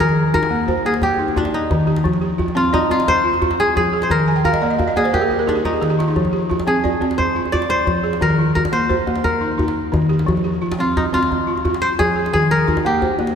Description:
west african traditional, West African string and xylophone music; 117 BPM (dotted quarters); 12/8; straight; F dorian; A4 = 440 Hz
kora; melody; 0.0-13.3 s; D4 to D5; -19 LUFS; left 1 dB
balafon; arpeggios; 0.0-13.3 s; Eb3 to Ab5; -19 LUFS; equal
djembe; percussion; 0.0-13.3 s; -23 LUFS; left 1 dB
wet church reverb, RT60 3.4 s; recorded in a church or concert hall; -15 LUFS; side -7 dB against mid
0.0-13.3 A section
balafon fill 4.3-6.2; drum fill 5.3-6.2
0.0 Eb; 2.1 Fm; 4.1 Eb; 6.2 Fm; 8.2 Eb5; 10.3 F5; 12.3 Eb

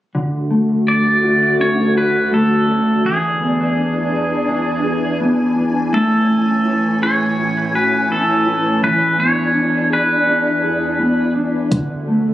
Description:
dream pop; 83 BPM; 4/4; straight; D lydian; A4 = 440 Hz
soft string machine; sustained chords; 0.1-12.3 s; D2 to G#5; -21 LUFS; equal; phaser, ensemble chorus
mellow electric guitar; arpeggios; 0.1-12.3 s; D3 to G#4; -18 LUFS; equal; analog chorus, tape echo
pedal steel guitar; melody; 0.9-11.3 s; G#4 to D5; -18 LUFS; equal; tape echo
crisp 8-bit digital drum machine; drums; 11.7-11.9 s; hi-hat, kick drum; -18 LUFS; equal; overdrive
light reverb, digital ambience; recorded on a phone in the room, club ambience; -14 LUFS; side -14 dB against mid
0.1-12.3 A section
0.1 Dmaj7; 3.0 E7; 5.9 Amaj7; 8.8 E7; 11.7 D

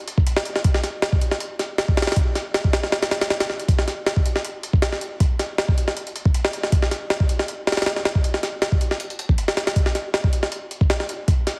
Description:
drum and bass; 158 BPM; 4/4; straight
jungle sampler-style drum kit; drums; 0.1-11.6 s; hi-hat, kick drum, snare drum; -22 LUFS; equal
light reverb; heavily compressed radio sound, multiband compression, vinyl crackle; -22 LUFS; mono
0.0-3.7 A section; 3.7-11.6 A section
drop 0.0-3.7, 3.7-11.6

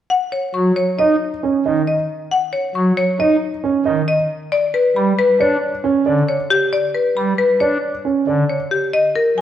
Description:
classical, minimalist pattern music; 136 BPM; 5/4; straight; A4 = 438 Hz
marimba with hard mallets; melody; 0.1-9.4 s; G4 to C#6; -17 LUFS; left 3 dB
pipe organ, foundations; accompaniment; 0.5-9.4 s; D3 to D#4; -20 LUFS; right 1 dB
dark baby grand piano; arpeggios; 1.0-8.6 s; C#4 to D#5; -19 LUFS; right 5 dB
wet recital hall reverb, RT60 1.6 s; worn, warbling old tape, cassette tape, warbly pitch drift; -15 LUFS; side -10 dB against mid
0.1-9.4 A section
0.1 D#m7; 4.5 G

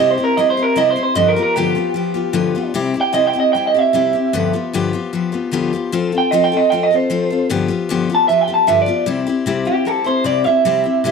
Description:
rock; 152 BPM; 4/4; straight; C major; A4 = 441 Hz
electric guitar through a small old amp; melody; 0.0-11.1 s; G4 to A5; -15 LUFS; right 4 dB; analog delay
picked steel-string acoustic guitar; accompaniment; 0.0-11.1 s; G2 to A4; -18 LUFS; left 6 dB
wet small room reverb, RT60 0.5 s; -14 LUFS; side -5 dB against mid
0.0-9.1 A section; 9.1-11.1 B section
0.0 C; 1.2 G7; 2.7 C; 4.3 G7; 5.9 F; 7.5 G7; 9.1 C

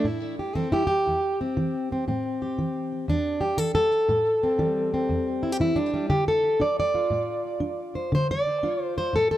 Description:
acoustic country blues, solo or duo; 119 BPM; 4/4; swing 67% on 8ths; A minor; A4 = 440 Hz
fingerpicked plugged-in steel-string acoustic guitar; solo; 0.0-9.4 s; E2 to D5; -22 LUFS; equal; tape echo
small room ambience; dry, close 1970s-style studio recording; -22 LUFS; side -13 dB against mid
0.0-9.4 A section
steel-string acoustic guitar solo 0.0-9.4
0.0 Am7; 6.1 Dm7

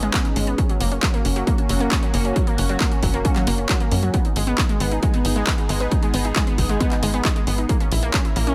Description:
uplifting trance; 135 BPM; 4/4; straight; G# minor; A4 = 440 Hz
lush unison pad; sustained chords; 0.0-8.5 s; A#3 to A#4; -31 LUFS; equal; chorus, phaser, sidechain pumping
unison pluck; arpeggios; 0.0-8.5 s; F#3 to E4; -28 LUFS; equal; cassette tape, sidechain pumping, digital delay
tight sequencer bass; bass; 0.0-8.5 s; F#1 to F#2; -25 LUFS; equal; tube saturation, sidechain pumping
techno drum kit; drums; 0.0-8.5 s; handclaps, hi-hat; -29 LUFS; equal; overdrive, small room ambience
electronic kick drum; drums; 0.1-8.2 s; -23 LUFS; equal; overdrive, small room ambience
little or no reverb; -20 LUFS; mono
0.0-8.5 A section
0.0 G#m; 0.6 F#; 4.1 G#m; 7.7 A#dim

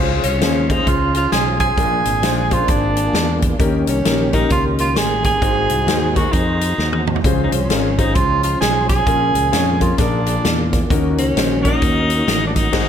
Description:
uptempo gospel; 132 BPM; 4/4; swing 62% on 8ths; Db major; A4 = 440 Hz
warm baby grand piano; accompaniment; 0.0-12.9 s; Ab2 to Eb5; -22 LUFS; left 5 dB
tonewheel organ; sustained chords; 0.0-12.9 s; Eb3 to C5; -26 LUFS; right 2 dB; slow rotary speaker, chorus vibrato
modern bright fingered electric bass; bass; 0.0-12.9 s; Ab1 to F2; -21 LUFS; equal
mellow tenor saxophone; melody; 0.2-12.9 s; Db4 to Ab4; -20 LUFS; right 2 dB; tape echo
swinging big-band drum kit; drums; 0.2-12.9 s; crash cymbal, hi-hat, kick drum, snare drum, toms; -20 LUFS; equal
light reverb; -14 LUFS; side -8 dB against mid
0.0-12.9 A section
drum fill 6.8-7.2; band accent 12.7
0.0 Dbmaj7; 1.8 Bb7; 3.6 Eb7; 5.4 Ab7; 7.2 Dbmaj7; 9.1 Bbm7; 10.0 Bb7; 10.9 Ebm7

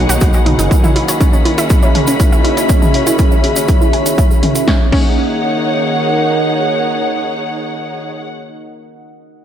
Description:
melodic techno; 121 BPM; 4/4; straight; Eb phrygian; A4 = 440 Hz
deep dark ambient pad; sustained chords; 0.0-8.1 s; Db4 to B5; -19 LUFS; right 1 dB; chorus, built-in reverb, sidechain pumping
analog pluck; arpeggios; 0.0-5.1 s; Db4 to Ab5; -20 LUFS; right 2 dB; chorus, sidechain pumping, diffuse ambient delay
swelling detuned saw bass; bass; 0.0-0.7 s; F#1 to B1; -16 LUFS; equal; sidechain pumping
analog drone; drone; 0.0-8.1 s; D#3 to Bb3; -23 LUFS; left 1 dB; chorus, sidechain pumping
dark studio string section; texture; 0.0-8.3 s; Db4 to Cb6; -20 LUFS; equal; sidechain pumping
punchy analog drum machine; drums; 0.1-5.1 s; crash cymbal, hi-hat, snare drum, toms; -20 LUFS; left 1 dB; sidechain pumping on hats, sidechain pumping on toms, sidechain pumping on cymbals
tube shaker; percussion; 0.1-4.7 s; -24 LUFS; right 3 dB
electronic kick drum; drums; 0.2-5.1 s; -12 LUFS; equal; overdrive
moderate lush hall reverb, RT60 1.8 s; dreamy mix soaked in reverb; -11 LUFS; side -10 dB against mid
0.0-4.7 A section; 4.7-8.6 B section
filter sweep on synth arpeggio sound 0.0-4.7
0.0 B; 0.7 Dbm; 4.7 Ebm7

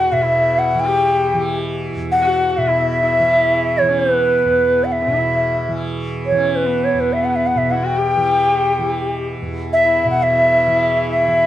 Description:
indian classical, Hindustani; free time; E raga shivaranjani; A4 = 442 Hz
bansuri; melody; 0.0-11.5 s; B4 to G5; -15 LUFS; equal
clear sarangi; second line; 0.0-11.5 s; B3 to G4+21c; -23 LUFS; left 3 dB
tanpura; drone; 0.0-11.5 s; E2 to E3; -23 LUFS; right 1 dB
moderate small room reverb, RT60 0.5 s; dark, warm production; -14 LUFS; side -12 dB against mid
0.0-11.5 A section

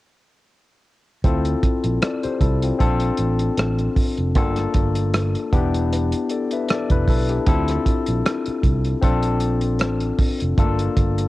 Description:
lush 1970s-style soul; 77 BPM; 4/4; swing 54% on 16ths; D minor; A4 = 441 Hz
barky tine electric piano; accompaniment; 1.2-11.3 s; A3 to E5; -22 LUFS; left 4 dB
fingered electric bass; bass; 1.2-11.3 s; E1 to D2; -22 LUFS; right 1 dB
warm soul drum kit; drums; 1.2-11.3 s; hi-hat, kick drum, rim click; -21 LUFS; right 1 dB; cassette tape
small room reverb; home recording on cassette; -18 LUFS; side -17 dB against mid
1.2-11.3 A section
1.2 Dm9; 2.8 Bbmaj7; 4.4 Gm7; 5.5 Em7; 7.5 Dm9; 9.0 Bbmaj7; 10.6 Gm7

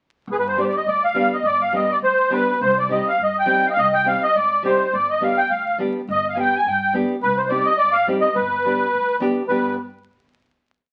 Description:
balkan folk, Balkan wedding band; 104 BPM; 2/4; swing 55% on 16ths; G phrygian dominant; A4 = 439 Hz
musette accordion; melody; 0.3-9.7 s; Ab4 to Ab5; -20 LUFS; equal
upright bass; bass; 0.3-9.7 s; G1 to G2; -36 LUFS; equal
nylon-string guitar; accompaniment; 0.6-9.8 s; G3 to G4; -26 LUFS; equal
wet studio reverb, RT60 0.7 s; very old 78 rpm record, vinyl crackle; -19 LUFS; mono
0.3-9.5 A section; 9.5-10.6 final chord
0.3 G; 2.6 Cm; 4.9 G; 7.2 Cm; 8.4 G

